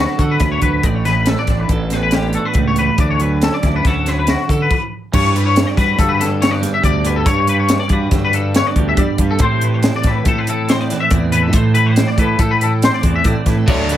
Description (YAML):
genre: math rock and midwest emo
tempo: 140 BPM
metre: 5/4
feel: straight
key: unclear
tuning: A4 = 443 Hz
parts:
  - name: twelve-string electric guitar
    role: accompaniment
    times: 0.0-14.0 s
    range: G2 to A4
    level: -20 LUFS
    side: right 6 dB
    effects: none
  - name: twangy electric guitar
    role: arpeggios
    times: 0.0-14.0 s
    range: F#4 to E5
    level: -19 LUFS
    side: left 5 dB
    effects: ensemble chorus, slapback echo
  - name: fuzz fingered electric bass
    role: bass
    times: 0.0-14.0 s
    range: A1 to G3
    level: -19 LUFS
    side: equal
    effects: overdrive
  - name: crisp fusion drum kit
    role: drums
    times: 0.2-14.0 s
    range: crash cymbal, hi-hat, kick drum, snare drum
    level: -18 LUFS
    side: equal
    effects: none
  - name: crunchy overdriven guitar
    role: riff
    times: 13.7-14.0 s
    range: D3 to D4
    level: -17 LUFS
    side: right 1 dB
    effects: none
room: light reverb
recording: none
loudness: -13 LUFS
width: side -12 dB against mid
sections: 0.0-5.1 A section; 5.1-14.0 B section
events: stop 4.7-5.1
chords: 0.0 D6; 0.9 Asus4; 3.0 Dmaj9; 5.1 Gmaj7; 9.4 Am7